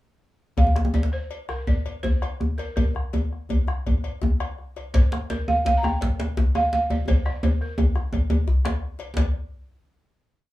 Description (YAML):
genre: west african traditional, West African drum ensemble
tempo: 112 BPM (dotted quarters)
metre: 12/8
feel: straight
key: Bb major pentatonic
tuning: A4 = 439 Hz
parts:
  - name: balafon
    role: melody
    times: 0.6-8.3 s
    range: Bb4 to Bb5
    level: -26 LUFS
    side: right 2 dB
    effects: none
  - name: bombo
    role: percussion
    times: 0.6-9.3 s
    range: none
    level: -25 LUFS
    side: equal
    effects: none
  - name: cowbell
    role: percussion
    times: 0.6-9.3 s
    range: none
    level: -39 LUFS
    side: left 6 dB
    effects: none
  - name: djembe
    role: percussion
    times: 0.6-9.3 s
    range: none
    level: -26 LUFS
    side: left 1 dB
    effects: none
  - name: djembe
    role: percussion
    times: 0.6-9.3 s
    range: none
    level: -24 LUFS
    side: equal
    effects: none
room: wet small room reverb, RT60 0.5 s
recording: heard from further back in the room, small room ambience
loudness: -21 LUFS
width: side -17 dB against mid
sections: 0.6-9.2 A section; 9.2-10.5 final hit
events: speeding up 0.6-10.5; drum fill 7.1-9.2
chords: none